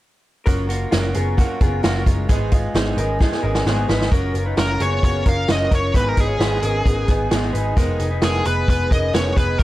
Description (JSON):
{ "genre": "jangly indie pop", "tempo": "132 BPM", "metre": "4/4", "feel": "straight", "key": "unclear", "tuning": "A4 = 441 Hz", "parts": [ { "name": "picked twelve-string acoustic guitar", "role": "accompaniment", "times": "0.5-9.6 s", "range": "Ab2 to Bb4", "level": "-26 LUFS", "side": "right 4 dB", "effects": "none" }, { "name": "electric guitar through a small old amp", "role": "arpeggios", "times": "0.5-9.6 s", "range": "Ab3 to Db5", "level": "-26 LUFS", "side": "left 2 dB", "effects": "digital delay" }, { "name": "vintage muted picked electric bass", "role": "bass", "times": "0.5-9.6 s", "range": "F1 to Eb2", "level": "-22 LUFS", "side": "equal", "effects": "none" }, { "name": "vintage drum kit", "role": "drums", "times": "0.5-9.6 s", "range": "hi-hat, kick drum, snare drum", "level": "-20 LUFS", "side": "equal", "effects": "none" }, { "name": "high-gain lead guitar", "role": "melody", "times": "4.6-9.6 s", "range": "Ab4 to F5", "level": "-23 LUFS", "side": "equal", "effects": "distortion, digital delay" } ], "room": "light reverb", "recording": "dark, warm production", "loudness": "-16 LUFS", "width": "side -16 dB against mid", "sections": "0.5-4.1 A section; 4.1-9.6 B section", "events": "drum fill 3.2-4.1", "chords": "0.5 Gbmaj7; 2.3 Abm; 4.1 Gbmaj7; 5.9 Abm; 7.8 Fm7b5" }